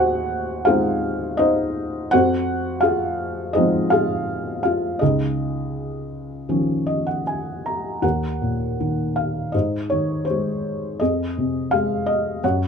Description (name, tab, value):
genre	classical, lyrical solo piano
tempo	82 BPM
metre	4/4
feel	rubato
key	unclear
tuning	A4 = 439 Hz
part	felt-muted upright piano	solo	0.0-12.7 s	Db2 to Bb5	-20 LUFS	equal	none
room	light reverb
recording	close, detailed microphones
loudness	-20 LUFS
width	side -6 dB against mid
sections	0.0-8.0 A section; 8.0-12.7 B section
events	felt piano fill 6.5-8.0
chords	0.0 Ab/Eb; 2.1 Fm; 5.0 Dbadd9; 8.0 Ebm; 9.5 Ab; 11.0 Fm7